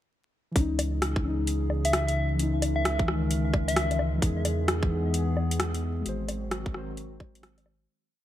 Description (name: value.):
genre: future garage.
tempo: 131 BPM.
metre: 4/4.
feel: swing 64% on 16ths.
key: C# dorian.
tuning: A4 = 444 Hz.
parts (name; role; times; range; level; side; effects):
muted felt-like synth keys; accompaniment; 0.5-7.9 s; D#3 to B#4; -32 LUFS; left 2 dB; chorus, vintage 12-bit sampler grit, sidechain pumping, ping-pong delay.
warbly tape-like pad; sustained chords; 0.9-7.9 s; C#3 to A#4; -34 LUFS; equal; chorus, built-in reverb, sidechain pumping.
warm sub bass; bass; 0.6-7.9 s; G#1 to E2; -29 LUFS; equal; sidechain pumping.
electronic kick drum; drums; 0.6-7.3 s; none; -26 LUFS; equal; none.
garage drum kit; drums; 0.6-7.8 s; hi-hat, rim click, woodblock; -30 LUFS; equal; none.
soft struck synth lead; melody; 1.9-4.0 s; E5; -32 LUFS; left 1 dB; chorus, vintage 12-bit sampler grit, tape echo.
room: light reverb.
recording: vinyl crackle.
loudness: -25 LUFS.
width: side -12 dB against mid.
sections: 0.6-7.9 groove.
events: fade-out 5.4-7.9.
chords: 0.6 C#madd9; 4.2 Emaj7; 6.1 G#7.